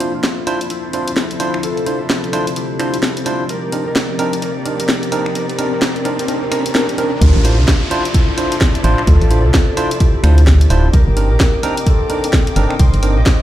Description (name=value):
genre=UK garage, two-step garage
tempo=129 BPM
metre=4/4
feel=swing 61% on 16ths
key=D minor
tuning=A4 = 440 Hz
part: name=concert harp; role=melody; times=0.0-13.4 s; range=C4 to Eb5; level=-23 LUFS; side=left 2 dB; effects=low-pass filter
part: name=muted symphonic violin section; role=sustained chords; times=0.0-13.4 s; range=Bb3 to D6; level=-29 LUFS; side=right 1 dB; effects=sidechain pumping
part: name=barky tine electric piano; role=stabs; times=0.0-13.1 s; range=C4 to C5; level=-21 LUFS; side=right 1 dB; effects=auto-pan, tape echo
part: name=garage drum kit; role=drums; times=0.0-13.4 s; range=finger snaps, hi-hat, snare drum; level=-20 LUFS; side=equal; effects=small room ambience
part: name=riser and downlifter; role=sound effects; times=2.8-10.9 s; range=none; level=-27 LUFS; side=right 1 dB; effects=none
part: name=deep dark ambient pad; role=texture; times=0.0-13.4 s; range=D3 to Bb4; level=-26 LUFS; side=left 2 dB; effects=chorus, built-in reverb, sidechain pumping
part: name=organ-like FM bass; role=bass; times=7.2-13.2 s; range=D1 to D2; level=-11 LUFS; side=equal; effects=none
part: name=electronic kick drum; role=drums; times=7.2-13.4 s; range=none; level=-13 LUFS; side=equal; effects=small room ambience
room=light reverb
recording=played on a big sound system in a bare room, large studio reverb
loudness=-13 LUFS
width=side -13 dB against mid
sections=0.0-7.2 A section; 7.2-13.4 B section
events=build-up 0.0-7.2; riser 2.8-7.2; drop 7.2-13.4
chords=0.0 Dm9; 3.5 Cm9; 7.2 Dm9; 10.9 Cm9